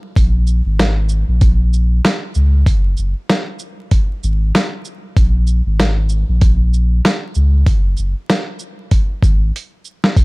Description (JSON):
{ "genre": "hip hop, boom-bap hip-hop", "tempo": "96 BPM", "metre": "4/4", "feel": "swing 56% on 16ths", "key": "Bb minor", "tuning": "A4 = 443 Hz", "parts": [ { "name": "warm sub bass", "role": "bass", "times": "0.2-10.2 s", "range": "Gb1 to Db2", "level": "-14 LUFS", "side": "equal", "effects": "none" }, { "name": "dusty soul sampler-style drum kit", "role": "drums", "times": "0.2-10.2 s", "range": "hi-hat, kick drum, shaker, snare drum", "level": "-14 LUFS", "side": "equal", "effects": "none" } ], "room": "digital ambience", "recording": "dark, warm production, vinyl crackle", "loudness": "-13 LUFS", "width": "side -25 dB against mid", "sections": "0.2-10.2 A section", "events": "drum fill 9.5-10.2", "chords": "none", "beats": "| 0.17 0.79 1.42 2.04 | 2.67 3.29 3.92 4.54 | 5.17 5.79 6.42 7.04 | 7.67 8.29 8.92 9.54 | 10.17" }